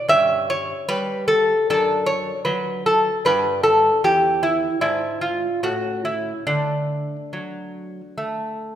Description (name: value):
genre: classical, baroque-style dance for lute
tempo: 71-78 BPM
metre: 4/4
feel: rubato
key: D major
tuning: A4 = 440 Hz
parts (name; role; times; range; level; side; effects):
- lute; solo; 0.0-8.8 s; E2 to E5; -18 LUFS; equal; none
room: wet recital hall reverb, RT60 1.5 s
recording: recorded in a church or concert hall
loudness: -18 LUFS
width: side -10 dB against mid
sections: 0.0-8.8 A section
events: none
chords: 0.1 A9/G; 1.7 D/F#; 3.3 Em7/G; 4.8 E7b9/G#; 5.7 A; 6.5 D